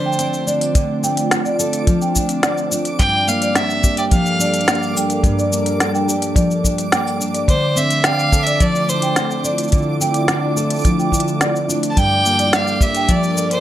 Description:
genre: folktronica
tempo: 107 BPM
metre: 4/4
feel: straight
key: D minor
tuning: A4 = 439 Hz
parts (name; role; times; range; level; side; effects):
- bright violin; melody; 0.0-13.6 s; C5 to A5; -20 LUFS; equal; tape echo
- warm analog pad; sustained chords; 0.0-13.6 s; D3 to Bb4; -24 LUFS; equal; chorus
- fingerpicked steel-string acoustic guitar; arpeggios; 0.0-13.6 s; G2 to A4; -21 LUFS; left 1 dB; tape echo
- backwards swelling texture; texture; 0.2-13.6 s; D6; -31 LUFS; right 5 dB; built-in reverb
- marimba with medium mallets; second line; 0.1-13.5 s; D5 to G5; -23 LUFS; right 2 dB; digital delay
- organic electronic drum kit; drums; 0.1-13.6 s; hi-hat, shaker, snare drum; -20 LUFS; equal; none
- kick drum; drums; 0.8-13.2 s; none; -16 LUFS; equal; none
room: light reverb, small room ambience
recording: none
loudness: -15 LUFS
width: side -12 dB against mid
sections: 0.0-13.6 A section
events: none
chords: 0.0 Dm7; 3.0 Gm7; 7.5 Dm7; 12.0 Gm7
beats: 0.19 | 0.75 1.31 1.88 2.44 | 3.00 3.56 4.12 4.68 | 5.24 5.80 6.36 6.92 | 7.48 8.04 8.60 9.16 | 9.72 10.29 10.85 11.41 | 11.97 12.53 13.09

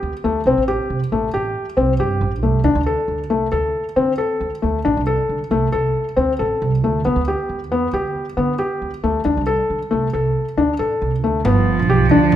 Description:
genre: contemporary instrumental, chamber music in an uneven meter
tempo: 136 BPM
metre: 5/4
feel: straight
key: D dorian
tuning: A4 = 440 Hz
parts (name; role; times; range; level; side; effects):
- felt-muted upright piano; arpeggios; 0.0-12.4 s; A3 to A4; -18 LUFS; left 2 dB; none
- upright bass; bass; 0.0-12.4 s; G1 to D3; -21 LUFS; right 2 dB; none
- clear cello; second line; 11.4-12.4 s; F3; -17 LUFS; right 9 dB; none
- frame drum; percussion; 11.4-12.4 s; none; -24 LUFS; left 1 dB; none
room: moderate recital hall reverb, RT60 1.4 s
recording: minimal, uncompressed stereo recording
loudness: -17 LUFS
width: side -11 dB against mid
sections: 0.0-11.4 A section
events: none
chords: 0.5 C5; 2.6 D5; 7.0 G/D; 9.2 D5; 11.4 G7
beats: 0.02 | 0.46 0.90 1.33 1.77 2.21 | 2.65 3.08 3.52 3.96 4.40 | 4.84 5.28 5.72 6.16 6.60 | 7.04 7.48 7.92 8.37 8.81 | 9.25 9.69 10.13 10.57 11.01 | 11.45 11.89 12.32

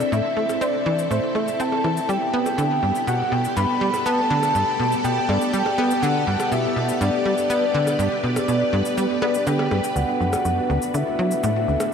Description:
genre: ambient, sequencer-driven space music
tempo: 122 BPM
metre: 4/4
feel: straight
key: G major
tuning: A4 = 440 Hz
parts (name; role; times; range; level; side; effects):
- soft octave-layered synth lead; melody; 0.0-11.9 s; C5 to B5; -23 LUFS; left 1 dB; chorus, ping-pong delay
- string machine, full ensemble; sustained chords; 0.0-11.9 s; B3 to E5; -25 LUFS; equal; ensemble chorus
- tight sequencer bass; riff; 0.0-11.8 s; D2 to C4; -24 LUFS; equal; analog chorus, cassette tape, ping-pong delay
- percussion blips and shaker; percussion; 0.0-11.9 s; none; -32 LUFS; equal; overdrive
- bubbling stepped-filter texture; texture; 0.0-11.9 s; none; barely audible; none; none
room: wet huge ambient reverb, RT60 8.5 s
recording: none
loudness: -19 LUFS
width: side -7 dB against mid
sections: 0.0-11.9 A section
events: fade-in on drum 0.0-11.9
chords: 0.0 Am; 2.1 Gadd9; 10.0 Dadd9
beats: | 0.12 0.62 1.11 1.60 | 2.09 2.58 3.08 3.57 | 4.06 4.55 5.04 5.53 | 6.03 6.52 7.01 7.50 | 7.99 8.48 8.98 9.47 | 9.96 10.45 10.94 11.44 | 11.93

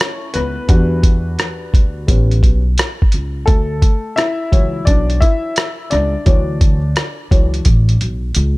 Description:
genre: hip hop, jazz-hop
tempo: 86 BPM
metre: 4/4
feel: swing 66% on 16ths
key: D major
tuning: A4 = 440 Hz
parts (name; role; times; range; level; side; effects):
- dark upright piano; accompaniment; 0.0-8.0 s; E3 to E5; -21 LUFS; left 2 dB; none
- lo-fi sampler-style drum kit; drums; 0.0-8.6 s; hi-hat, kick drum, rim click; -13 LUFS; equal; none
- upright bass; bass; 0.4-8.6 s; A1 to E2; -17 LUFS; equal; none
room: little or no reverb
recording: none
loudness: -13 LUFS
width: side -22 dB against mid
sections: 0.0-8.6 A section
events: upright piano solo 0.0-8.6; drum fill 7.7-8.6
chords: 0.0 B9sus4; 0.7 Em7; 2.1 A9; 3.5 Dmaj9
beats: | 0.69 1.39 2.08 2.78 | 3.48 4.18 4.88 5.57 | 6.27 6.97 7.67 8.36

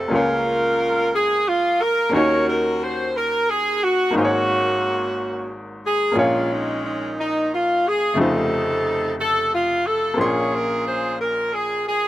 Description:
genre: slow gospel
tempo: 60 BPM (dotted quarters)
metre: 6/8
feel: straight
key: unclear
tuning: A4 = 439 Hz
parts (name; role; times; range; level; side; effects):
- clear saxophone section; melody; 0.0-12.1 s; Ab3 to Db5; -19 LUFS; equal; none
- bright upright piano; accompaniment; 0.0-12.1 s; F1 to C6; -24 LUFS; left 1 dB; slapback echo
room: little or no reverb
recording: recorded outdoors, with no room sound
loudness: -18 LUFS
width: side -14 dB against mid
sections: 0.0-12.1 A section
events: none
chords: 0.1 Bbm7/Db; 2.1 Ebm7; 4.1 Ab9sus4; 6.2 Bbm7; 8.2 F7b13; 10.2 Bbm9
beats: | 0.12 1.12 | 2.13 3.14 | 4.14 5.15 | 6.16 7.16 | 8.17 9.17 | 10.18 11.18

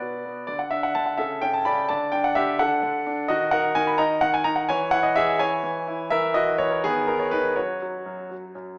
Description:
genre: classical-period piano sonatina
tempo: 85 BPM (dotted quarters)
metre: 6/8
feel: rubato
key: B major from 3.3 s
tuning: A4 = 439 Hz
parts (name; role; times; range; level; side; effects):
- clear concert grand piano; solo; 0.0-8.8 s; F#2 to B5; -24 LUFS; equal; none
room: moderate recital hall reverb, RT60 1.4 s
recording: AM radio sound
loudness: -23 LUFS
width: mono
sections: 0.0-8.8 A section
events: none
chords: 0.5 N.C.; 1.2 A/C#; 1.9 D; 3.3 D#m; 4.7 C#m/E; 6.1 F#7/E; 6.8 B/D#; 7.6 N.C.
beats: | 0.48 1.19 | 1.90 2.60 | 3.30 3.99 | 4.69 5.39 | 6.11 6.83 | 7.57 8.31

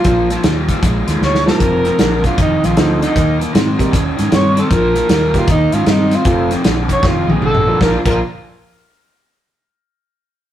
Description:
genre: electric blues shuffle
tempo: 155 BPM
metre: 4/4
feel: swing 64% on 8ths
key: Bb major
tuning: A4 = 440 Hz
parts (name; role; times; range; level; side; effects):
- breathy tenor saxophone; melody; 0.0-8.2 s; Eb4 to Db5; -17 LUFS; right 1 dB; none
- warm concert grand piano; accompaniment; 0.0-8.2 s; F3 to A5; -20 LUFS; right 2 dB; none
- raw garage guitar; riff; 0.0-8.2 s; F2 to F4; -19 LUFS; left 1 dB; overdrive
- vintage muted fingered electric bass; bass; 0.0-8.2 s; F1 to Ab2; -18 LUFS; equal; none
- warm soul drum kit; drums; 0.0-8.1 s; crash cymbal, hi-hat, kick drum, snare drum, toms; -16 LUFS; equal; none
room: moderate stone room reverb, RT60 0.9 s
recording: rough rehearsal-room recording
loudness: -12 LUFS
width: side -11 dB against mid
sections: 0.0-7.8 A section; 7.8-9.4 B section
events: drum fill 1.2-1.6, 7.0-7.8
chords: 0.0 Bb; 1.6 F; 3.2 Eb; 4.7 Bb5; 5.5 Eb; 6.3 F; 7.8 Bb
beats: | 0.05 0.44 0.83 1.22 | 1.60 1.99 2.38 2.77 | 3.16 3.54 3.93 4.32 | 4.71 5.10 5.49 5.87 | 6.26 6.65 7.04 7.42 | 7.81

